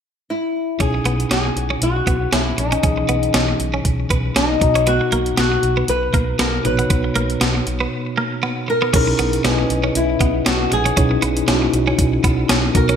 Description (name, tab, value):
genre	1980s-style pop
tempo	118 BPM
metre	4/4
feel	swing 55% on 16ths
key	unclear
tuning	A4 = 440 Hz
part	flamenco guitar	melody	0.3-13.0 s	D#4 to B4	-21 LUFS	left 2 dB	wide subtle chorus
part	mellow tine electric piano	accompaniment	0.8-13.0 s	B2 to A#5	-22 LUFS	equal	medium stereo tremolo
part	twelve-string electric guitar	riff	0.8-13.0 s	A#3 to C#4	-24 LUFS	right 3 dB	analog chorus, ping-pong delay
part	vintage muted fingered electric bass	bass	0.8-13.0 s	A#1 to B1	-23 LUFS	equal	none
part	gated 80s digital drum machine	drums	0.8-13.0 s	crash cymbal, hi-hat, kick drum, snare drum	-20 LUFS	equal	gated reverb, gated reverb snare
room	moderate plate reverb, RT60 2.0 s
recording	bright 1980s-style digital production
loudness	-16 LUFS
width	side -8 dB against mid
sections	0.8-8.9 A section; 8.9-13.0 B section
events	break 7.9-8.9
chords	0.0 N.C.; 0.8 C#madd9; 4.6 Bmaj7; 8.9 C#madd9